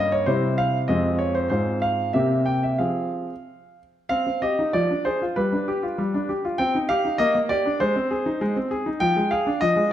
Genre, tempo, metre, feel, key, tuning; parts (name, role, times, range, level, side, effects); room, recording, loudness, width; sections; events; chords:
classical-period piano sonatina; 91-100 BPM; 2/4; rubato; F minor, C minor from 4.1 s; A4 = 440 Hz
clear grand piano; solo; 0.0-9.9 s; F2 to G5; -20 LUFS; equal
wet recital hall reverb, RT60 1.4 s; -20 LUFS; side -11 dB against mid
0.0-4.1 A section; 4.1-9.9 B section
0.3 C; 0.9 Fm; 1.5 Fm/Ab; 2.2 C7; 2.8 Fm; 4.1 Cm; 4.7 Ddim/F; 5.4 G7; 6.6 Cm; 7.2 Gm/Bb; 7.8 Ab; 9.0 Ddim/F